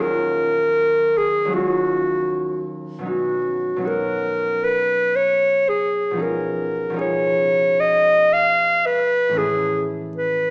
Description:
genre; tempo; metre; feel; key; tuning
classical, impressionist duo for clarinet and harp; 77 BPM; 4/4; rubato; unclear; A4 = 436 Hz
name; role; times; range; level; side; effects
clear clarinet; melody; 0.0-10.5 s; F#4 to E#5; -17 LUFS; equal; none
concert harp; accompaniment; 0.0-10.5 s; D#2 to A4; -27 LUFS; equal; none
room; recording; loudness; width
wet recital hall reverb, RT60 1.5 s; small speaker sound; -17 LUFS; side -31 dB against mid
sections
0.0-10.5 A section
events
none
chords
0.0 D#m9; 3.1 Bmaj9; 6.2 C#13/B; 9.4 Amaj7

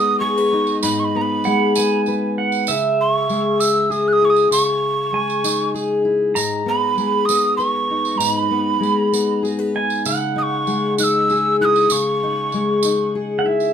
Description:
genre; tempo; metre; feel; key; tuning
acoustic folk duo or small band; 65 BPM (dotted quarters); 6/8; straight; unclear; A4 = 440 Hz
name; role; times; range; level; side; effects
breathy mid whistle; melody; 0.0-13.1 s; A#5 to F#6; -19 LUFS; right 3 dB; none
pedal steel guitar; second line; 0.0-13.7 s; D#5 to A#5; -24 LUFS; right 6 dB; none
fingerpicked steel-string acoustic guitar; accompaniment; 0.0-13.7 s; G#2 to B4; -19 LUFS; left 3 dB; none
tambourine; percussion; 0.7-13.7 s; none; -25 LUFS; right 7 dB; none
room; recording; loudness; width
moderate studio reverb, RT60 0.6 s; minimal, uncompressed stereo recording; -16 LUFS; side -8 dB against mid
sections
0.0-13.7 A section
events
none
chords
0.0 G#m; 2.7 C#madd9; 6.4 G#madd9; 10.0 C#madd9

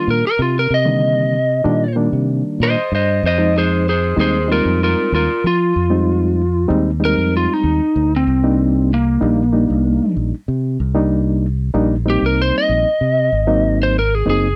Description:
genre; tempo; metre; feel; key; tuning
straight-eighth soul blues; 95 BPM; 4/4; straight; C minor; A4 = 440 Hz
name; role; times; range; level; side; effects
lightly driven lead guitar; melody; 0.0-14.6 s; Bb3 to Eb5; -19 LUFS; equal; none
reed electric piano; accompaniment; 0.0-14.5 s; D3 to Eb4; -21 LUFS; equal; fast tremolo
fingered electric bass; bass; 0.1-14.6 s; Gb1 to F3; -21 LUFS; equal; none
room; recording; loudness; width
light reverb; dry, close 1970s-style studio recording; -16 LUFS; mono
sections
0.0-14.6 A section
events
lead electric guitar solo 0.0-14.6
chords
0.0 Cm7; 3.2 Fm7; 8.3 Cm7; 13.3 Ab7

